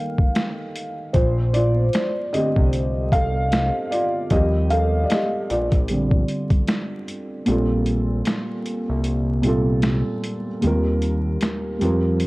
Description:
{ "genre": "lo-fi hip hop", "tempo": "76 BPM", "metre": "4/4", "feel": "swing 58% on 16ths", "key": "Bb major", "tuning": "A4 = 441 Hz", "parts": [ { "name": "felt-muted upright piano", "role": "accompaniment", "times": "0.0-12.3 s", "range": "Eb2 to G5", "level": "-22 LUFS", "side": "equal", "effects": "cassette tape" }, { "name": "boom bap sampler-style drum kit", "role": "drums", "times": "0.2-12.3 s", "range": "finger snaps, hi-hat, kick drum, snare drum", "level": "-21 LUFS", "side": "equal", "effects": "overdrive" }, { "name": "fat analog bass", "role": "bass", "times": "1.2-12.3 s", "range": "Bb1 to F2", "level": "-22 LUFS", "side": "equal", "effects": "none" } ], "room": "digital ambience", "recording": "worn, warbling old tape, cassette tape, vinyl crackle, warbly pitch drift", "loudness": "-19 LUFS", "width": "side -21 dB against mid", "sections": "0.0-7.5 A section; 7.5-12.3 B section", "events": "felt piano solo 0.0-7.5; kick muted 7.5-12.3", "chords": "0.0 F7sus4; 1.1 Bbmaj9; 4.3 Eb69; 5.5 Bb69; 7.5 Bbsus2; 10.6 Eb69" }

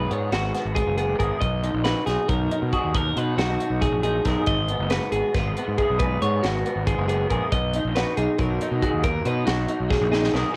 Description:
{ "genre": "math rock and midwest emo", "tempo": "276 BPM (eighths)", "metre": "7/8", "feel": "straight", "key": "B major", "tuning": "A4 = 440 Hz", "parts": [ { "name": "electric guitar through a small old amp", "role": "accompaniment", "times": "0.0-10.6 s", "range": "G#2 to G#4", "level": "-29 LUFS", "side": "equal", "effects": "ensemble chorus, cassette tape" }, { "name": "clean electric guitar", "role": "arpeggios", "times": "0.0-10.6 s", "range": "F#4 to D#5", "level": "-29 LUFS", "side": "equal", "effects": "cassette tape" }, { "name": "fuzz fingered electric bass", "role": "bass", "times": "0.0-10.4 s", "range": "F#1 to B2", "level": "-29 LUFS", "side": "equal", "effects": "overdrive" }, { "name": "crisp fusion drum kit", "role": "drums", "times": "0.1-10.4 s", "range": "hi-hat, kick drum, snare drum", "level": "-31 LUFS", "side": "equal", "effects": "cassette tape" } ], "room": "small room ambience", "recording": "home recording on cassette", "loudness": "-23 LUFS", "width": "mono", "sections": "0.0-10.6 A section", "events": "drum fill 9.9-10.6", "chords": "0.0 G#m7; 1.4 Bmaj7; 4.5 G#m7; 7.5 Bmaj7" }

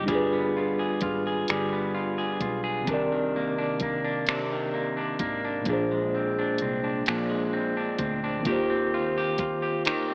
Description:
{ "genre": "slow six-eight R&B", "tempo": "43 BPM (dotted quarters)", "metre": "6/8", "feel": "straight", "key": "C minor", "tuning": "A4 = 440 Hz", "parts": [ { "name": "electric guitar at the edge of break-up", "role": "second line", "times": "0.0-10.1 s", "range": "Bb2 to Ab4", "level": "-31 LUFS", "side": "equal", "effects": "spring reverb" }, { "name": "mellow tine electric piano", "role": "accompaniment", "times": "0.0-10.1 s", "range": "Bb2 to D5", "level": "-31 LUFS", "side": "equal", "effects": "none" }, { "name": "vintage muted fingered electric bass", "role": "bass", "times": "0.0-10.1 s", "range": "G1 to Eb2", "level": "-41 LUFS", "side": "equal", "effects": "transformer saturation" }, { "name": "smooth R&B drum kit", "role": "drums", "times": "0.1-10.1 s", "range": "finger snaps, hi-hat, kick drum", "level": "-32 LUFS", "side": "equal", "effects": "none" } ], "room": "light reverb", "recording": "worn, warbling old tape, cassette tape, warbly pitch drift, AM radio sound", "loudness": "-27 LUFS", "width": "mono", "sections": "0.0-10.1 A section", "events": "none", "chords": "0.1 G7b9; 2.9 Cm9; 5.7 Bb9; 8.5 Eb69" }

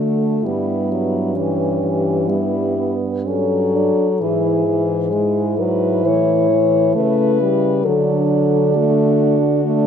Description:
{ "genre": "classical, lyrical piece for horn quartet", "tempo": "66 BPM", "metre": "4/4", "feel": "rubato", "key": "unclear", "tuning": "A4 = 440 Hz", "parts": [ { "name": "mellow French horn", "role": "melody", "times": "0.0-9.9 s", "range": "E4 to C#5", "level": "-20 LUFS", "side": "left 7 dB", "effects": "none" }, { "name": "mellow French horn", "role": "second line", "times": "0.0-9.9 s", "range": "A3 to E4", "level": "-21 LUFS", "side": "right 8 dB", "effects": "none" }, { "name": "mellow French horn", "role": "accompaniment", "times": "0.0-9.9 s", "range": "E3 to A3", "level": "-21 LUFS", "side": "left 2 dB", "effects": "none" }, { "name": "mellow French horn", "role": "bass", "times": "0.0-9.9 s", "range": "G2 to D3", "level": "-22 LUFS", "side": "right 3 dB", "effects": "none" } ], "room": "moderate concert hall reverb, RT60 1.9 s", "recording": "none", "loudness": "-15 LUFS", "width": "side -8 dB against mid", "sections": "0.0-9.9 A section", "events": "none", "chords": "0.4 Em/G; 4.2 E/G#; 6.0 A; 7.8 D" }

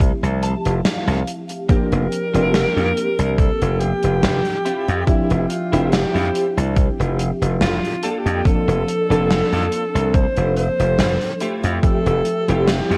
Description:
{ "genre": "vaporwave", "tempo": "71 BPM", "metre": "4/4", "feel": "swing 54% on 16ths", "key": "F major", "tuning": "A4 = 444 Hz", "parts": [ { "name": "mellow FM electric piano", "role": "accompaniment", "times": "0.0-13.0 s", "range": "F3 to E5", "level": "-26 LUFS", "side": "equal", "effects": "ensemble chorus" }, { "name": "clean electric guitar", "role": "riff", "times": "0.0-13.0 s", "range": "A3 to A5", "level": "-30 LUFS", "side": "equal", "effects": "ensemble chorus, vintage 12-bit sampler grit" }, { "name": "glassy slap bass", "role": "bass", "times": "0.0-13.0 s", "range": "F1 to F2", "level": "-22 LUFS", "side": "equal", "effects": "tube saturation" }, { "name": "electronic kick drum", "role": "drums", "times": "0.0-12.0 s", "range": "none", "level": "-20 LUFS", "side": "equal", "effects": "none" }, { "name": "gated 80s drum kit", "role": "drums", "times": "0.0-13.0 s", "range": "hi-hat, snare drum", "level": "-26 LUFS", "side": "equal", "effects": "none" }, { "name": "breathy alto saxophone", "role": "melody", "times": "1.7-13.0 s", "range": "E4 to C5", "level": "-25 LUFS", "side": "equal", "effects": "tape echo" } ], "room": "light reverb, studio ambience", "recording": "worn, warbling old tape, cassette tape, warbly pitch drift", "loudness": "-19 LUFS", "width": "mono", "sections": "0.0-13.0 A section", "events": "clean electric guitar fill 0.0-1.7", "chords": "0.0 Fmaj9; 1.7 Bb69/F; 4.7 Dm11/F; 8.0 C13sus4/F; 11.4 Fmaj9" }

